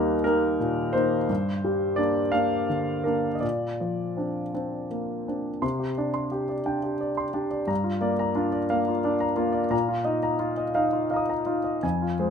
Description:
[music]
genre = neoclassical minimalist piano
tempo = 53-60 BPM (dotted quarters)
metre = 6/8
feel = rubato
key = C minor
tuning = A4 = 440 Hz
[part]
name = clear grand piano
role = solo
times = 0.0-12.3 s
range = Eb2 to Eb6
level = -24 LUFS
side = left 1 dB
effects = none
[sound]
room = light reverb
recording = minimal, uncompressed stereo recording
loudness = -24 LUFS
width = side -7 dB against mid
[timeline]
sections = 0.0-5.6 A section; 5.6-12.3 B section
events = none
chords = 0.0 Eb; 1.3 Gm7; 3.4 Bbadd9; 5.6 Csus2; 7.7 Gm7; 9.7 Bbsus4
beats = 0.27 | 1.29 2.34 | 3.43 4.55 | 5.63 6.67 | 7.70 8.72 | 9.73 10.76 | 11.84

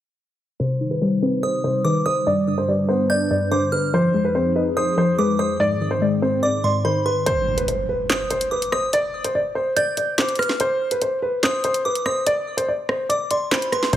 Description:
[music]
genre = hip hop, drill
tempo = 144 BPM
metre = 4/4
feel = half-time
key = C harmonic minor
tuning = A4 = 440 Hz
[part]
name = dark concert grand piano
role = melody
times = 0.6-14.0 s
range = B4 to D5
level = -21 LUFS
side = equal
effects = low-pass filter
[part]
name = warbly dusty pluck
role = accompaniment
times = 0.6-7.3, 13.9-14.0 s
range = G2 to Eb4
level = -22 LUFS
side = left 2 dB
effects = chorus, low-pass filter
[part]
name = hollow soft pad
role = sustained chords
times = 0.8-7.2 s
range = F2 to C5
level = -27 LUFS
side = right 2 dB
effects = chorus, low-pass filter
[part]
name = delicate synth tine bell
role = second line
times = 1.4-13.9 s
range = B5 to G6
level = -27 LUFS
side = right 2 dB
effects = chorus, phaser, digital delay
[part]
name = drill drum kit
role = drums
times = 7.3-14.0 s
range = handclaps, hi-hat, kick drum, rim click, snare drum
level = -23 LUFS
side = equal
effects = overdrive
[part]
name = impact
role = sound effects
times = 7.3-8.9 s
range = none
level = -30 LUFS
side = right 1 dB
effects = none
[part]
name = distorted 808-style bass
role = bass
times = 13.9-14.0 s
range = C2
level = -19 LUFS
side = right 1 dB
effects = distortion
[sound]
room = light reverb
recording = none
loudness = -18 LUFS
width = side -11 dB against mid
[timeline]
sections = 0.6-7.3 A section; 7.3-14.0 B section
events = filter sweep 0.6-7.3; kick muted 7.3-13.9; impact 7.3-8.9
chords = 0.6 Cm; 2.3 G; 3.9 Fm7; 5.6 Ab; 7.3 N.C.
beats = | 0.60 1.01 1.43 1.85 | 2.27 2.68 3.10 3.52 | 3.93 4.35 4.76 5.18 | 5.60 6.01 6.43 6.85 | 7.26 7.68 8.10 8.52 | 8.93 9.35 9.77 10.18 | 10.60 11.02 11.43 11.85 | 12.27 12.68 13.10 13.52 | 13.93

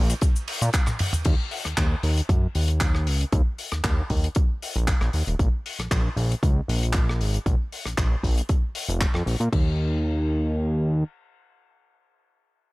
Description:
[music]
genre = nu-disco, nu disco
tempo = 116 BPM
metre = 4/4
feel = swing 53% on 16ths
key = Eb minor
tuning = A4 = 439 Hz
[part]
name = fat analog bass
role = bass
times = 0.0-11.0 s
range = Eb1 to Bb2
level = -23 LUFS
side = equal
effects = none
[part]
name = damped 70s drum kit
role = drums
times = 0.1-9.6 s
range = cabasa, crash cymbal, handclaps, hi-hat, ride cymbal, rim click, toms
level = -29 LUFS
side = left 1 dB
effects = none
[part]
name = electronic kick drum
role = drums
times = 0.2-9.6 s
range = none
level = -22 LUFS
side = equal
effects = none
[sound]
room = little or no reverb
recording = none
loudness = -21 LUFS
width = side -22 dB against mid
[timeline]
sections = 0.0-1.3 A section; 1.3-9.5 B section; 9.5-12.7 C section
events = drop 0.0-1.3; drum fill 0.9-1.3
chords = none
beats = 0.22 0.74 | 1.25 1.77 2.29 2.81 | 3.32 3.84 4.36 4.87 | 5.39 5.91 6.43 6.94 | 7.46 7.98 8.49 9.01 | 9.53 10.05 10.56

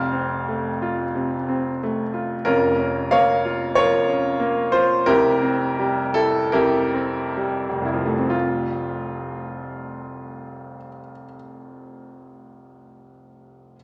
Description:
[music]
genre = classical, romantic character piece for solo piano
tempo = 60-95 BPM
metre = 4/4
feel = rubato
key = F major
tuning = A4 = 440 Hz
[part]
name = clear baby grand piano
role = solo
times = 0.0-13.8 s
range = F1 to F6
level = -22 LUFS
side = equal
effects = none
[sound]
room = wet recital hall reverb, RT60 1.6 s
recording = none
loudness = -21 LUFS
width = mono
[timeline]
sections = 0.0-2.5 A section; 2.5-8.3 B section; 8.3-11.6 C section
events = slowing down 1.2-8.3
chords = 0.0 F; 2.5 Bbm/F; 5.1 C7/F; 8.3 F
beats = 0.49 1.16 1.83 | 2.48 3.13 3.78 4.42 | 5.08 5.80 6.56 7.41 | 8.33 9.15 9.97 10.77

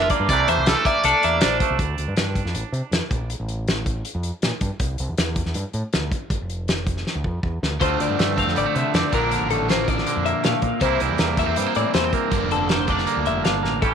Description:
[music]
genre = math rock and midwest emo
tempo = 160 BPM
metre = 4/4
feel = straight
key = D minor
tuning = A4 = 440 Hz
[part]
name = crunchy overdriven guitar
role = melody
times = 0.0-1.6 s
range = A4 to D5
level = -23 LUFS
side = equal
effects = tape echo
[part]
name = twangy electric guitar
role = accompaniment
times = 0.0-3.3, 7.8-13.9 s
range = D2 to G4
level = -24 LUFS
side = right 13 dB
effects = none
[part]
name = twelve-string electric guitar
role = arpeggios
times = 0.0-1.8, 7.8-13.9 s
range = A4 to F5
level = -24 LUFS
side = left 10 dB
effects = none
[part]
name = growling fingered electric bass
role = bass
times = 0.0-13.9 s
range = F1 to C3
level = -26 LUFS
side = equal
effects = overdrive
[part]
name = loose indie drum kit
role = drums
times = 0.1-13.9 s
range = hi-hat, kick drum, snare drum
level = -24 LUFS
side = equal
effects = none
[part]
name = crunchy overdriven guitar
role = riff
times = 7.8-13.8 s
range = G2 to E4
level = -26 LUFS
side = equal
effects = none
[sound]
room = light reverb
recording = 1960s-style stereo with parts hard left and right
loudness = -19 LUFS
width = side -7 dB against mid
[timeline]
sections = 0.0-1.8 A section; 1.8-13.8 B section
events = drum fill 7.1-7.8, 13.6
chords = 0.3 C13; 1.8 Dm; 3.1 Bbmaj7; 4.8 C; 6.3 N.C.; 7.8 Dm7; 9.1 Bbmaj7; 10.8 C7; 12.3 Gm7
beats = | 0.30 0.67 1.05 1.42 | 1.80 2.17 2.55 2.92 | 3.30 3.67 4.05 4.43 | 4.80 5.18 5.55 5.93 | 6.30 6.68 7.06 7.43 | 7.81 8.18 8.56 8.93 | 9.31 9.69 10.06 10.44 | 10.81 11.19 11.56 11.94 | 12.32 12.69 13.07 13.45 | 13.82

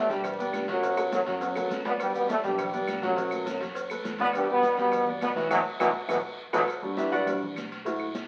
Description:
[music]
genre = latin, salsa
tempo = 205 BPM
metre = 4/4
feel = straight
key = E minor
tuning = A4 = 435 Hz
[part]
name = mellow trombone section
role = melody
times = 0.0-6.6 s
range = F#2 to E4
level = -29 LUFS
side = equal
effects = none
[part]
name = warm grand piano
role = accompaniment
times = 0.0-8.1 s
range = F#3 to G5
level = -34 LUFS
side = equal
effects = none
[part]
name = upright bass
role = bass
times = 0.0-8.2 s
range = B1 to G2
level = -51 LUFS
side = equal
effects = none
[part]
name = congas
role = percussion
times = 0.1-8.3 s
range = none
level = -44 LUFS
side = equal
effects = none
[part]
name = cowbell and bongos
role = percussion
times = 0.1-8.3 s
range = none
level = -42 LUFS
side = equal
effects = none
[part]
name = guiro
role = percussion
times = 0.1-8.3 s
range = none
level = -46 LUFS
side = equal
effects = none
[part]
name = maracas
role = percussion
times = 0.1-8.3 s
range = none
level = -56 LUFS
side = equal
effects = none
[part]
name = claves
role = percussion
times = 0.2-8.1 s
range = none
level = -45 LUFS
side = equal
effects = none
[sound]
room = wet large studio reverb, RT60 1.2 s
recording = very old 78 rpm record, vinyl crackle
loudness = -28 LUFS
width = mono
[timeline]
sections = 0.0-6.7 A section; 6.7-8.3 B section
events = drum fill 0.8-2.0, 6.1-6.7; band accent 5.5-6.7; grand piano solo 6.7-8.3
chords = 0.0 Em9 (rootless); 0.8 B7sus4; 2.0 Em9; 3.2 B7sus4; 4.3 Em9; 5.5 B7(no3); 6.7 Em9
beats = 0.24 0.54 | 0.83 1.12 1.41 1.71 | 2.00 2.29 2.58 2.88 | 3.17 3.46 3.76 4.05 | 4.34 4.64 4.93 5.22 | 5.51 5.81 6.10 6.39 | 6.69 6.98 7.27 7.56 | 7.86 8.15

